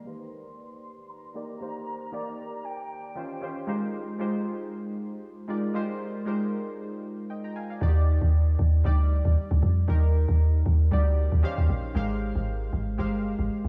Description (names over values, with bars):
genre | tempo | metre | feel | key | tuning
amapiano | 116 BPM | 4/4 | swing 55% on 16ths | Eb major | A4 = 440 Hz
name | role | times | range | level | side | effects
silver concert flute | melody | 0.0-3.4 s | G5 to C6 | -44 LUFS | equal | low-pass filter, analog delay
warm analog keys | accompaniment | 0.0-13.7 s | Eb3 to Bb5 | -34 LUFS | equal | chorus, low-pass filter
deep log drum bass | bass | 7.8-13.7 s | G1 to F2 | -24 LUFS | equal | none
room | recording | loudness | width
moderate lush hall reverb, RT60 2.9 s | dreamy mix soaked in reverb | -26 LUFS | mono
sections
0.0-7.8 A section; 7.8-13.7 B section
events
filter sweep 0.0-7.8; drop 7.8-13.7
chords
0.0 Ebmaj7; 3.2 Eb13; 3.7 Abmaj13; 7.8 Ebmaj7; 11.4 Eb13; 12.0 Abmaj13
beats
0.06 0.57 1.09 | 1.61 2.12 2.64 3.16 | 3.68 4.19 4.71 5.23 | 5.75 6.26 6.78 7.30 | 7.82 8.33 8.85 9.37 | 9.88 10.40 10.92 11.44 | 11.95 12.47 12.99 13.50